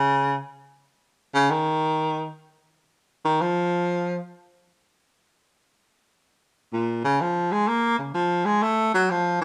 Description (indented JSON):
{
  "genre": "jazz",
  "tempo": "free time",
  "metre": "none",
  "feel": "none",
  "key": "unclear",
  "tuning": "A4 = 442 Hz",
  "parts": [
    { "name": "warm baritone saxophone", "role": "solo", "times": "0.0-9.4 s", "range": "Bb2 to Bb3", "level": "-23 LUFS", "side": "equal", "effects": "none" }
  ],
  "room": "moderate studio reverb, RT60 1.0 s",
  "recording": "none",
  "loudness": "-24 LUFS",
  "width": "mono",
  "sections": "0.0-9.4 A section",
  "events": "none",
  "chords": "none"
}